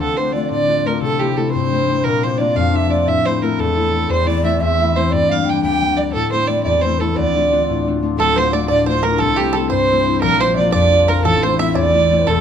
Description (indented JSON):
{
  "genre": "celtic folk, Celtic jig",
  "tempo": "117 BPM (dotted quarters)",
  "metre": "6/8",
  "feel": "straight",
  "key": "D minor",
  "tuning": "A4 = 440 Hz",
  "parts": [
    { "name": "warm fiddle", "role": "melody", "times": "0.0-12.4 s", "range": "G4 to G5", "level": "-18 LUFS", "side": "right 5 dB", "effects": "plate reverb" },
    { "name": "breathy mellow shakuhachi", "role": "second line", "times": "0.0-12.4 s", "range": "G4 to G5", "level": "-24 LUFS", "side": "left 2 dB", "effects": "none" },
    { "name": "concert harp", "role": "accompaniment", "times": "0.0-12.4 s", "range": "D1 to G4", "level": "-17 LUFS", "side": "left 4 dB", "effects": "none" },
    { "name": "bluegrass banjo", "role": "second line", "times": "8.2-12.4 s", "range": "G4 to E5", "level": "-23 LUFS", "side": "right 7 dB", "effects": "none" }
  ],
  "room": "moderate studio reverb, RT60 0.6 s",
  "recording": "dark, warm production",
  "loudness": "-14 LUFS",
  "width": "side -8 dB against mid",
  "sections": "0.0-8.2 A section; 8.2-12.4 A section",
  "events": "none",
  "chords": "0.0 Dm; 1.0 C6; 2.0 Bb; 3.1 Am; 5.1 Gm; 6.1 Am; 7.2 Dm; 9.2 C6; 10.2 Bb; 11.2 Am"
}